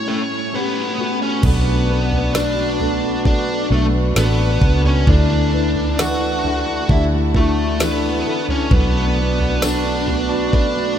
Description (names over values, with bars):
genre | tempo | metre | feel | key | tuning
pop ballad | 66 BPM | 4/4 | straight | unclear | A4 = 442 Hz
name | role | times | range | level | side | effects
smooth overdriven lead guitar | melody | 0.0-11.0 s | A3 to F#5 | -21 LUFS | equal | none
felt-muted upright piano | accompaniment | 0.0-11.0 s | A1 to B4 | -24 LUFS | left 5 dB | ensemble chorus
picked steel-string acoustic guitar | arpeggios | 0.0-11.0 s | A2 to A4 | -26 LUFS | right 6 dB | analog chorus
pedal harmonium | sustained chords | 1.4-11.0 s | E4 to B5 | -26 LUFS | right 2 dB | none
vintage muted fingered electric bass | bass | 1.4-10.9 s | A1 to D2 | -20 LUFS | equal | none
smooth R&B drum kit | drums | 1.4-10.7 s | crash cymbal, kick drum, snare drum, toms | -19 LUFS | right 1 dB | none
tambourine | percussion | 2.3-9.8 s | none | -36 LUFS | left 6 dB | none
room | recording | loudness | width
moderate huge ambient reverb, RT60 5.3 s | dreamy mix soaked in reverb | -15 LUFS | side -9 dB against mid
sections
0.0-1.4 A section; 1.4-11.0 B section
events
break 0.0-1.4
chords
0.0 A7; 1.4 Bm7; 5.1 Dsus2; 8.7 Bm7